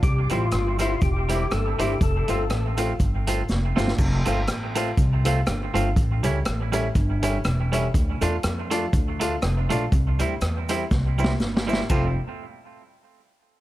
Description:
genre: ska.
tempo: 121 BPM.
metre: 4/4.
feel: swing 56% on 8ths.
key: F major.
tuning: A4 = 440 Hz.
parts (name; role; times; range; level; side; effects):
percussive tonewheel organ; melody; 0.0-2.5 s; F4 to A4; -28 LUFS; left 3 dB; overdrive, chorus vibrato, slow rotary speaker, analog delay.
upright bass; bass; 0.0-12.2 s; E1 to F2; -24 LUFS; equal; none.
vintage drum kit; drums; 0.0-12.0 s; crash cymbal, hi-hat, kick drum, ride cymbal, rim click, snare drum; -25 LUFS; equal; none.
cabasa; percussion; 0.0-12.2 s; none; -43 LUFS; left 4 dB; none.
semi-hollow electric guitar; accompaniment; 0.3-12.1 s; G3 to F4; -30 LUFS; right 6 dB; analog delay.
clear upright piano; stabs; 0.3-12.1 s; E4 to F5; -30 LUFS; left 3 dB; none.
room: light reverb, studio reverb.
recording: none.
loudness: -21 LUFS.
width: side -15 dB against mid.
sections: 0.0-4.0 A section; 4.0-11.9 B section; 11.9-13.6 C section.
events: drum fill 3.5-4.0, 10.9-11.9.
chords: 0.0 C; 2.0 F; 6.0 A7; 7.9 Dm; 9.9 C; 11.9 F.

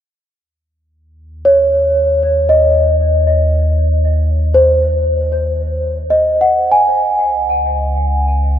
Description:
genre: ambient.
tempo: 58 BPM.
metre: 3/4.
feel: straight.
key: Eb dorian.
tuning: A4 = 440 Hz.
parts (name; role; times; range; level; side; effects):
deep rumbling drone; bass; 1.4-8.6 s; Db2 to Eb2; -16 LUFS; equal; built-in reverb, phaser.
celesta; arpeggios; 1.5-8.6 s; C5 to Ab5; -12 LUFS; equal; tape echo.
room: wet huge ambient reverb, RT60 7.4 s.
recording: none.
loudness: -11 LUFS.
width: side -10 dB against mid.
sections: 0.4-8.6 A section.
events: none.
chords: 0.4 Eb7(no3); 6.6 Dbsus4.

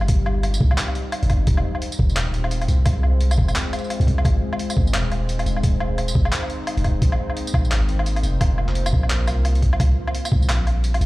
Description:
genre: half-time drum and bass.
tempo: 173 BPM.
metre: 4/4.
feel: swing 60% on 16ths, half-time.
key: unclear.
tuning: A4 = 440 Hz.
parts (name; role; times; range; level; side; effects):
deep dark ambient pad; sustained chords; 0.0-11.1 s; G3 to C5; -30 LUFS; left 1 dB; chorus, built-in reverb, sidechain pumping.
long sustained 808-style bass; bass; 0.0-11.1 s; Eb1 to C2; -20 LUFS; equal; none.
boom bap sampler-style drum kit; drums; 0.0-11.1 s; handclaps, hi-hat, tambourine, woodblock; -27 LUFS; equal; overdrive.
electronic kick drum; drums; 0.1-10.4 s; none; -18 LUFS; equal; overdrive.
room: digital ambience.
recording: played on a big sound system in a bare room, large studio reverb.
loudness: -18 LUFS.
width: side -19 dB against mid.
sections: 0.0-11.1 A section.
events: none.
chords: 0.0 Cm; 1.5 Fm; 7.0 Bbsus2; 9.8 Cm.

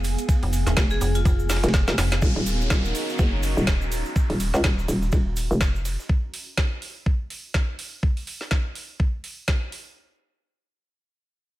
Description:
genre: bass house.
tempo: 124 BPM.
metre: 4/4.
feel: swing 58% on 16ths.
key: Eb minor.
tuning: A4 = 440 Hz.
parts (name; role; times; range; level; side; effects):
metallic FM bass; bass; 0.0-2.2 s; Eb1 to F1; -23 LUFS; equal; tube saturation, sidechain pumping.
dusty soul sampler-style drum kit; drums; 0.0-6.1 s; hi-hat, ride cymbal, snare drum; -39 LUFS; right 2 dB; none.
garage drum kit; drums; 0.0-9.8 s; hi-hat, snare drum; -29 LUFS; equal; overdrive, studio reverb.
cabasa; percussion; 0.0-6.1 s; none; -39 LUFS; right 2 dB; none.
granular cloud pad; texture; 0.0-4.2 s; Cb4 to Bb5; -34 LUFS; equal; built-in reverb, sidechain pumping.
electronic kick drum; drums; 0.3-9.6 s; none; -22 LUFS; equal; overdrive, studio reverb.
hollow knocking FM bass; bass; 0.8-6.0 s; Eb1 to Db2; -24 LUFS; equal; tube saturation, sidechain pumping.
vibraphone with hard mallets; melody; 0.9-1.6 s; F4 to Ab4; -32 LUFS; left 2 dB; digital delay.
sweeping resonant pad; sustained chords; 2.2-4.1 s; Eb4 to Db5; -34 LUFS; right 1 dB; chorus, sidechain pumping.
downlifter; sound effects; 2.2-6.1 s; none; -34 LUFS; equal; none.
room: little or no reverb.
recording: none.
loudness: -21 LUFS.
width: side -16 dB against mid.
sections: 0.0-2.2 A section; 2.2-10.0 B section.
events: drop 0.0-2.2; drum fill 1.5-2.2.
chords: 0.0 Fdim; 2.2 Ebm7.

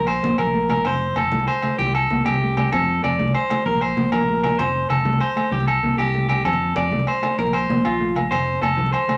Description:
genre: highlife guitar band.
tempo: 129 BPM (dotted quarters).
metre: 12/8.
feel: straight.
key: F major.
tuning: A4 = 440 Hz.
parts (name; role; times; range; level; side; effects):
electric guitar at the edge of break-up; arpeggios; 0.0-9.2 s; F4 to D5; -24 LUFS; equal; none.
fingered electric bass; bass; 0.0-8.9 s; F1 to F2; -27 LUFS; equal; none.
congas; percussion; 0.0-9.2 s; none; -30 LUFS; equal; none.
agogo bells; percussion; 0.1-9.2 s; none; -28 LUFS; equal; none.
clean electric guitar; accompaniment; 0.2-9.2 s; F3 to C4; -30 LUFS; equal; none.
room: wet club reverb, RT60 0.7 s.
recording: none.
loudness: -20 LUFS.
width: mono.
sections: 0.0-9.2 A section.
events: drum fill 5.8-6.5.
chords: 0.0 Bbsus2; 0.9 F; 1.8 C5; 2.7 F; 3.7 Bbsus2; 4.6 F; 5.5 C5; 6.5 F; 7.4 Bb5; 8.3 F.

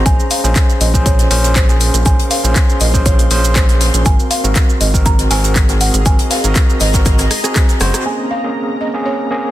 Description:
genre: deep house.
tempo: 120 BPM.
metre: 4/4.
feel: straight.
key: Bb minor.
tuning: A4 = 440 Hz.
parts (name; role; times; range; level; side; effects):
overdriven tine electric piano; stabs; 0.0-9.5 s; Bb3 to C5; -19 LUFS; equal; medium tremolo, sidechain pumping, ping-pong delay.
granular cloud pad; texture; 0.0-9.5 s; Ab4 to C6; -26 LUFS; equal; built-in reverb, sidechain pumping.
buzzing marimba with soft mallets; melody; 0.1-9.5 s; C5 to Bb5; -23 LUFS; right 1 dB; ping-pong delay.
rubbery square bass; bass; 0.1-7.9 s; Gb1 to Bb1; -15 LUFS; equal; sidechain pumping.
electronic kick drum; drums; 0.1-7.7 s; none; -13 LUFS; equal; studio reverb.
house drum kit; drums; 0.1-8.0 s; handclaps, hi-hat, rim click, shaker; -19 LUFS; equal; studio reverb.
open jazz drum kit; drums; 0.1-8.1 s; hi-hat, shaker, snare drum; -25 LUFS; left 3 dB; sidechain pumping on hats, high-pass filter on hats, studio reverb, high-pass filter on snare, sidechain pumping on perc, high-pass filter on perc, high-pass filter on room.
analog string pad; texture; 8.1-9.5 s; Bb4 to Bb5; -29 LUFS; equal; ensemble chorus, sidechain pumping.
room: small room ambience.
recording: dense, heavily limited modern master.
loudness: -11 LUFS.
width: side -14 dB against mid.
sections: 0.0-8.1 A section; 8.1-9.5 B section.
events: drum fill 7.1-8.1; band accent 7.9.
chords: 0.1 Bbm9; 4.1 Ab9; 8.1 Bbm9.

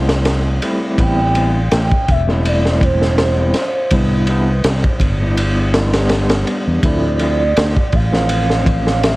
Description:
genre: trip hop.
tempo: 82 BPM.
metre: 4/4.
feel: swing 55% on 16ths.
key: D dorian.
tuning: A4 = 444 Hz.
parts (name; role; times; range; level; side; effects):
pure breathy sine lead; melody; 0.0-9.2 s; B4 to G5; -22 LUFS; right 2 dB; lush chorus, cassette tape, tape echo.
overdriven tine electric piano; accompaniment; 0.0-9.2 s; E3 to G4; -20 LUFS; equal; fast tremolo, tape echo.
fingered electric bass; bass; 0.0-9.2 s; E1 to E2; -17 LUFS; equal; none.
crunchy breakbeat drum kit; drums; 0.1-9.2 s; kick drum, ride cymbal, snare drum; -17 LUFS; equal; none.
room: little or no reverb.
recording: worn, warbling old tape, cassette tape, vinyl crackle, warbly pitch drift.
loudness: -13 LUFS.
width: side -20 dB against mid.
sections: 0.0-9.2 A section.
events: none.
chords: 0.0 Fmaj7 (rootless); 1.0 Am7; 3.9 Cmaj7; 6.8 Dm7.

